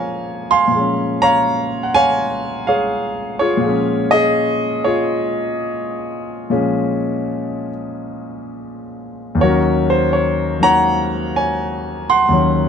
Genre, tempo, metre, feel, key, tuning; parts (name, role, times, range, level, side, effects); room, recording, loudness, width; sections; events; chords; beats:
solo jazz; 83 BPM; 4/4; swing 69% on 8ths; Bb minor; A4 = 442 Hz
warm concert grand piano; solo; 0.0-12.7 s; Eb2 to C6; -16 LUFS; equal
light reverb; nothing above 10.7 kHz; -15 LUFS; side -7 dB against mid
0.0-12.7 A section
0.0 Bbm7; 9.4 Ebm7
0.00 | 0.72 1.44 2.17 2.89 | 3.61 4.33 5.05 5.78 | 6.50 7.22 7.95 8.67 | 9.40 10.12 10.85 11.57 | 12.30